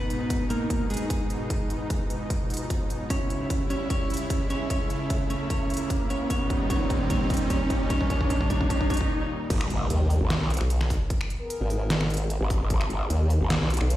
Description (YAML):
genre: heavy wobble dubstep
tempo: 150 BPM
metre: 4/4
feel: half-time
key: G# harmonic minor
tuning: A4 = 440 Hz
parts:
  - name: clean electric guitar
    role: melody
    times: 0.0-9.1 s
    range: G#3 to C#5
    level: -31 LUFS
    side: right 2 dB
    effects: ping-pong delay
  - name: supersaw pad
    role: sustained chords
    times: 0.0-9.5 s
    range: C#2 to E4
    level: -32 LUFS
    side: equal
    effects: sidechain pumping
  - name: riser and impact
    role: sound effects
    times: 1.2-11.1 s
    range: none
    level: -34 LUFS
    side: equal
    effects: none
  - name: dubstep drum kit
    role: drums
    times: 0.1-14.0 s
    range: crash cymbal, finger snaps, hi-hat, snare drum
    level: -32 LUFS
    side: right 1 dB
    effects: small room ambience
  - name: electronic kick drum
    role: drums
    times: 0.3-12.8 s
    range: none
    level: -27 LUFS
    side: equal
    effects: small room ambience
  - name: growl bass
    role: bass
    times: 9.5-13.8 s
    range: G#1 to B1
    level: -26 LUFS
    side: equal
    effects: chorus, overdrive
  - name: warm brass ensemble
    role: stabs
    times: 9.8-13.1 s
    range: B3 to A#4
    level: -37 LUFS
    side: left 3 dB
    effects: ping-pong delay
  - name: formant-sweep wobble bass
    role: bass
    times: 9.9-14.0 s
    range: G#1 to D#2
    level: -23 LUFS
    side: equal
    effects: chorus, overdrive
room: light reverb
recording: played on a big sound system in a bare room, stone room reverb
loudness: -24 LUFS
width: side -14 dB against mid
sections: 0.0-9.5 A section; 9.5-14.0 B section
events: build-up 0.0-9.5; riser 1.2-9.1; drum fill 3.1-9.1; break 9.1-9.5; drop 9.5-14.0; impact 9.5-11.1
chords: 0.0 G#m; 3.1 C#m; 6.3 D#; 9.5 G#madd9